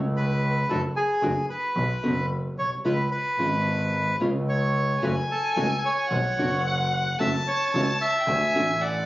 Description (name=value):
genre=tango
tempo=111 BPM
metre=4/4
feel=rubato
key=F# minor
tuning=A4 = 439 Hz
part: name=clear double bass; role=bass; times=0.0-9.1 s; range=F#1 to D2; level=-27 LUFS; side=equal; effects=none
part: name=bandoneon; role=melody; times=0.2-9.1 s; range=G#4 to F#5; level=-26 LUFS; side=equal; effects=none
part: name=nylon-string guitar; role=accompaniment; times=0.7-8.6 s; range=B2 to F#4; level=-28 LUFS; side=equal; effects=none
part: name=warm violin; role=second line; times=5.0-9.1 s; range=F#5 to A5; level=-28 LUFS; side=left 2 dB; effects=none
room=light reverb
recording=recorded on a phone in the room, studio reverb, nothing above 7.5 kHz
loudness=-22 LUFS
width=side -16 dB against mid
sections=0.0-9.1 A section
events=none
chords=0.0 N.C.; 0.7 D/F#; 1.8 Bsus2; 2.8 C#; 5.0 F#m7; 6.1 Bm; 7.2 F#m7; 8.3 D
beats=0.15 | 0.69 1.23 1.76 2.30 | 2.84 3.38 3.93 4.47 | 5.02 5.57 6.11 6.66 | 7.20 7.74 8.28 8.81